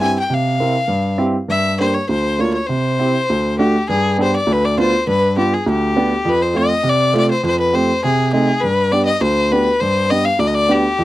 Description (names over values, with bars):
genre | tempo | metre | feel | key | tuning
klezmer | 101 BPM | 2/4 | straight | G phrygian dominant from 3.9 s | A4 = 439 Hz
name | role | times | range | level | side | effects
clear violin | melody | 0.0-11.0 s | G4 to Ab5 | -17 LUFS | left 2 dB | none
warm upright piano | accompaniment | 0.0-11.0 s | D2 to Bb4 | -17 LUFS | right 2 dB | none
room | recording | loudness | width
light reverb | dry, close 1970s-style studio recording | -14 LUFS | side -15 dB against mid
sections
0.0-3.9 A section; 3.9-11.0 B section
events
none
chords
0.0 C; 1.5 Gm; 2.7 C; 3.3 D7; 3.9 G; 6.3 F; 8.6 G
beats
| 0.28 0.89 | 1.49 2.09 | 2.69 3.28 | 3.88 4.48 | 5.07 5.67 | 6.26 6.85 | 7.45 8.04 | 8.63 9.22 | 9.81 10.39 | 10.98